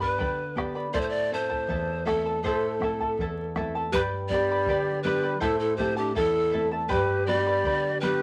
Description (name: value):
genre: andean folk, Andean ensemble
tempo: 80 BPM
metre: 2/4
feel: straight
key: A minor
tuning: A4 = 440 Hz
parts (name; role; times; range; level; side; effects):
- breathy bright pan flute; melody; 0.0-8.2 s; G4 to D5; -30 LUFS; equal; none
- charango; accompaniment; 0.0-8.2 s; E4 to B5; -33 LUFS; equal; none
- nylon-string guitar; accompaniment; 0.0-8.2 s; E2 to G4; -35 LUFS; equal; none
- bombo; percussion; 0.0-7.8 s; none; -38 LUFS; equal; none
- bright large quena; second line; 3.9-8.2 s; D4 to G4; -31 LUFS; equal; none
room: moderate studio reverb, RT60 0.6 s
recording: vinyl crackle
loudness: -26 LUFS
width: mono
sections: 0.0-3.9 A section; 3.9-8.2 B section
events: none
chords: 0.0 G; 0.9 Am; 3.9 G; 5.4 Am; 6.9 G